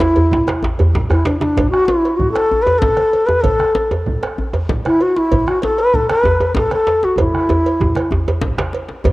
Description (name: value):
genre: west african traditional, West African drum ensemble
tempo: 128 BPM (dotted quarters)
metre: 12/8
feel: straight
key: unclear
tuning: A4 = 440 Hz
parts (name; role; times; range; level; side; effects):
- bansuri; melody; 0.0-8.1 s; D4 to B4; -15 LUFS; left 1 dB; cassette tape
- bombo; percussion; 0.0-9.1 s; none; -23 LUFS; right 1 dB; none
- congas; percussion; 0.0-9.1 s; none; -25 LUFS; right 2 dB; none
- cowbell; percussion; 0.0-9.1 s; none; -26 LUFS; right 4 dB; none
- djembe; percussion; 0.0-9.1 s; none; -24 LUFS; left 1 dB; none
- djembe; percussion; 0.0-9.1 s; none; -18 LUFS; equal; none
room: moderate spring reverb, RT60 2.7 s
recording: home recording on cassette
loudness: -13 LUFS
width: side -19 dB against mid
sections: 0.0-9.1 A section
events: drum fill 0.8-1.6, 7.2-9.1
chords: none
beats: 0.16 0.63 1.10 | 1.57 2.04 2.50 2.97 | 3.44 3.91 4.38 4.84 | 5.31 5.78 6.25 6.71 | 7.18 7.65 8.12 8.58 | 9.05